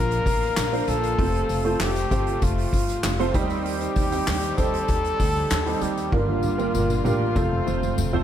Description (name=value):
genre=piano-driven pop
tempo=97 BPM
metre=4/4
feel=straight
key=unclear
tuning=A4 = 439 Hz
part: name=breathy trumpet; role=melody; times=0.0-8.2 s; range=F4 to Bb4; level=-27 LUFS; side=left 2 dB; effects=none
part: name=warm grand piano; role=accompaniment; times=0.0-8.2 s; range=G2 to D5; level=-27 LUFS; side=right 4 dB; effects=ensemble chorus
part: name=warm studio string section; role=sustained chords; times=0.0-8.2 s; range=C3 to G4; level=-36 LUFS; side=left 4 dB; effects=none
part: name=upright bass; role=bass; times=0.0-8.2 s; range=F1 to Eb2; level=-27 LUFS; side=equal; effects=none
part: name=soft-mallet drum kit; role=drums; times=0.1-8.2 s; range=handclaps, hi-hat, kick drum, snare drum, toms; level=-26 LUFS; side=equal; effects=none
part: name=tambourine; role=percussion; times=0.3-8.1 s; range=none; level=-42 LUFS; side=left 10 dB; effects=none
room=light reverb, small room ambience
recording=none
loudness=-21 LUFS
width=side -10 dB against mid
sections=0.0-8.2 A section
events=drum fill 6.1-8.2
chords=0.0 Bb; 1.2 F; 3.3 Cm/Eb; 6.1 Gm7; 7.4 F